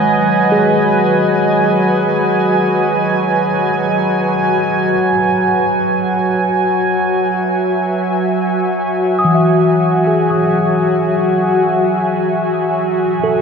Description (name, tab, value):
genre	ambient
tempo	free time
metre	none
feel	none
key	unclear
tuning	A4 = 440 Hz
part	warbly tape-like pad	sustained chords	0.0-13.4 s	F#3 to G#5	-13 LUFS	equal	chorus, built-in reverb
part	mellow tine electric piano	arpeggios	0.0-13.4 s	D#3 to D#6	-18 LUFS	left 1 dB	slow stereo tremolo, ping-pong delay
room	wet huge ambient reverb, RT60 7.2 s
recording	none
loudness	-12 LUFS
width	side -6 dB against mid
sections	0.0-4.9 A section; 4.9-13.4 B section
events	none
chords	0.0 G#m; 4.9 F#7(no3)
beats	free time